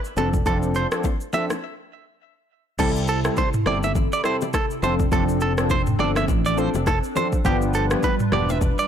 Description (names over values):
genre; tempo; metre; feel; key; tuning
afrobeats; 103 BPM; 4/4; swing 58% on 16ths; C major; A4 = 440 Hz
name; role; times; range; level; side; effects
afro-pop drum kit; drums; 0.0-8.9 s; crash cymbal, kick drum, rim click, shaker, toms; -24 LUFS; equal; overdrive
warm analog keys; accompaniment; 0.2-8.5 s; F3 to A4; -26 LUFS; left 1 dB; chorus
direct-recorded clean electric guitar; riff; 0.2-8.9 s; G4 to E5; -26 LUFS; right 5 dB; ping-pong delay
fingered electric bass; bass; 0.2-8.7 s; E1 to C2; -25 LUFS; equal; none
bongos and congas; percussion; 0.2-8.8 s; none; -32 LUFS; left 10 dB; none
hollow soft pad; sustained chords; 2.8-8.9 s; C3 to B4; -28 LUFS; equal; ensemble chorus
room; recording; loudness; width
light reverb; blown-out, overdriven recording, overdrive; -19 LUFS; side -9 dB against mid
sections
0.0-2.8 A section; 2.8-8.9 B section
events
break 1.6-2.8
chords
0.2 F6; 2.8 C6; 4.8 F6; 7.5 G7